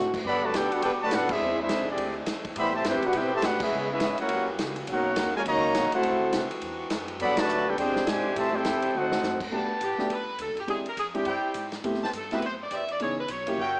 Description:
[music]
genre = jazz, big band swing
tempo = 207 BPM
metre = 4/4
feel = swing 61% on 8ths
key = G major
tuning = A4 = 440 Hz
[part]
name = clear saxophone section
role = sustained chords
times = 0.0-9.5 s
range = C3 to G4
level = -35 LUFS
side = equal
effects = none
[part]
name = upright bass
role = bass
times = 0.0-13.8 s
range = E1 to C#3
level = -40 LUFS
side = equal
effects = none
[part]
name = swinging big-band drum kit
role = drums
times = 0.1-13.7 s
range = crash cymbal, hi-hat, kick drum, ride cymbal, snare drum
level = -33 LUFS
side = equal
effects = none
[part]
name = clear trumpet section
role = melody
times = 0.3-9.4 s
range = B#3 to B5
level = -26 LUFS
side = equal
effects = none
[part]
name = warm trombone section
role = second line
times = 0.3-9.4 s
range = C3 to G4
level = -29 LUFS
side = equal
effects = none
[part]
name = warm grand piano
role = accompaniment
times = 9.5-13.6 s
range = E3 to G#4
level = -31 LUFS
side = equal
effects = none
[part]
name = mellow trumpet section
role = stabs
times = 9.5-13.8 s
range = E4 to A5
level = -30 LUFS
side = equal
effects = none
[part]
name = edgy saxophone section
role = melody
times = 9.8-13.8 s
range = G4 to E5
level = -31 LUFS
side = equal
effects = none
[sound]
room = moderate large studio reverb, RT60 0.9 s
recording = small speaker sound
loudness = -24 LUFS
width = side -28 dB against mid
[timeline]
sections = 0.2-9.5 A section; 9.5-13.8 B section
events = band accent 1.3, 3.6, 7.3; drum fill 8.9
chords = 0.2 Gmaj9; 1.4 E7alt; 2.6 Am9; 3.7 C#m7; 4.3 F#7b9; 4.9 Bmaj9; 6.0 D9; 7.2 Gmaj9; 7.8 E7alt; 8.4 Am7; 8.9 D7b9; 9.5 Gmaj9; 10.7 E7alt; 11.8 Am9; 13.0 C#m7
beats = | 0.24 0.54 0.82 1.11 | 1.40 1.69 1.98 2.27 | 2.56 2.85 3.14 3.43 | 3.72 4.01 4.30 4.59 | 4.88 5.17 5.46 5.75 | 6.04 6.33 6.62 6.91 | 7.20 7.49 7.78 8.07 | 8.36 8.65 8.94 9.23 | 9.52 9.81 10.10 10.39 | 10.68 10.97 11.26 11.55 | 11.84 12.13 12.42 12.71 | 13.01 13.30 13.59

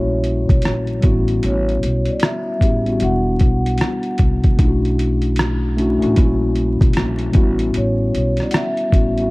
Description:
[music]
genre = lo-fi hip hop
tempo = 76 BPM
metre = 4/4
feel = swing 64% on 16ths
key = unclear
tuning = A4 = 440 Hz
[part]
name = vibraphone with soft mallets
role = melody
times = 0.0-9.3 s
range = C#5 to F#5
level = -25 LUFS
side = equal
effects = tape echo
[part]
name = mellow tine electric piano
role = accompaniment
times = 0.0-9.3 s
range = G3 to G4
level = -20 LUFS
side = left 1 dB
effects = slow stereo tremolo, cassette tape
[part]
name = upright bass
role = bass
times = 0.0-9.3 s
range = E1 to C2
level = -20 LUFS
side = equal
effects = none
[part]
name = dusty soul sampler-style drum kit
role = drums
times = 0.2-9.3 s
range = hi-hat, kick drum, rim click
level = -17 LUFS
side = equal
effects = overdrive
[sound]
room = little or no reverb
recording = dark, warm production, vinyl crackle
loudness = -15 LUFS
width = side -23 dB against mid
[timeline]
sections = 0.0-9.3 A section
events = none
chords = 0.0 F#7b9/A#; 1.0 A13; 3.0 Em9; 4.6 Bm11; 6.2 F#7b9/A#; 7.3 A13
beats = 0.64 | 1.43 2.22 3.01 3.80 | 4.59 5.38 6.17 6.96 | 7.75 8.53

